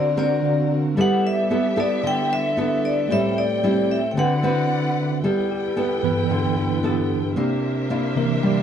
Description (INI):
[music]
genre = bossa nova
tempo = 113 BPM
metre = 4/4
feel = straight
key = G major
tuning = A4 = 441 Hz
[part]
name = vibraphone with medium hard mallets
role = melody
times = 0.0-4.9 s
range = D5 to G5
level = -23 LUFS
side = left 2 dB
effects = none
[part]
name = bell-like tine electric piano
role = accompaniment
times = 0.0-8.6 s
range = G2 to E#5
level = -24 LUFS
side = right 2 dB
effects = medium stereo tremolo
[part]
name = nylon-string guitar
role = accompaniment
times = 0.0-8.6 s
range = A2 to B4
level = -22 LUFS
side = equal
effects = none
[part]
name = dark symphonic string section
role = sustained chords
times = 0.0-8.6 s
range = B3 to G5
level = -29 LUFS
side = equal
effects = none
[sound]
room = light reverb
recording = dark, warm production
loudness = -19 LUFS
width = side -8 dB against mid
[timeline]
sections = 0.0-5.2 A section; 5.2-8.6 B section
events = tine electric piano solo 5.2-8.6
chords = 0.0 D7alt; 1.0 G69; 3.1 Am7; 4.2 D13; 5.2 G69; 7.4 C9